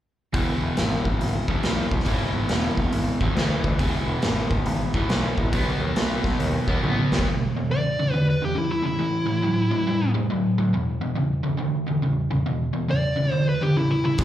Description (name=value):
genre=blues rock power trio and southern rock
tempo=139 BPM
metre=4/4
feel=swing 65% on 8ths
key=E mixolydian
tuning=A4 = 440 Hz
part: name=crunchy overdriven guitar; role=riff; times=0.3-14.2 s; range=E2 to B3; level=-23 LUFS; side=equal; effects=slapback echo
part: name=overdriven picked electric bass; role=bass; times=0.3-7.2, 14.2 s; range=E1 to D#2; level=-27 LUFS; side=equal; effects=none
part: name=raw garage drum kit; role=drums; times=0.3-7.3, 14.2 s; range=hi-hat, kick drum, snare drum, toms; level=-25 LUFS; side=equal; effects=none
part: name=dark smooth lead guitar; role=melody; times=7.7-10.1, 12.9-14.2 s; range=E4 to D5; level=-25 LUFS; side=equal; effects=overdrive, plate reverb, slapback echo
room=moderate club reverb, RT60 0.8 s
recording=live gig heard through the venue's PA, club reverb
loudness=-21 LUFS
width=side -12 dB against mid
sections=0.3-7.3 A section; 7.3-14.2 B section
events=drum fill 6.8-7.3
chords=0.3 E; 5.5 B; 7.3 E5; 9.0 A5; 10.7 E5